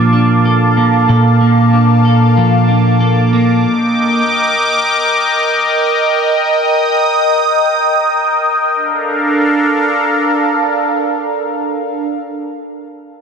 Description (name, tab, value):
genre	dream pop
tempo	94 BPM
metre	4/4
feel	straight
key	Bb major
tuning	A4 = 441 Hz
part	phased analog pad	sustained chords	0.0-12.1 s	Bb3 to Eb6	-12 LUFS	equal	phaser, chorus
part	clean electric guitar	arpeggios	0.0-4.2 s	Bb2 to A4	-11 LUFS	right 1 dB	lush chorus, ping-pong delay
room	moderate huge ambient reverb, RT60 4.0 s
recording	dense, heavily limited modern master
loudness	-10 LUFS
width	side -6 dB against mid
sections	0.0-8.8 A section; 8.8-11.3 B section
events	none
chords	0.0 Bbmaj7; 3.6 Ebmaj7; 8.8 Bbmaj7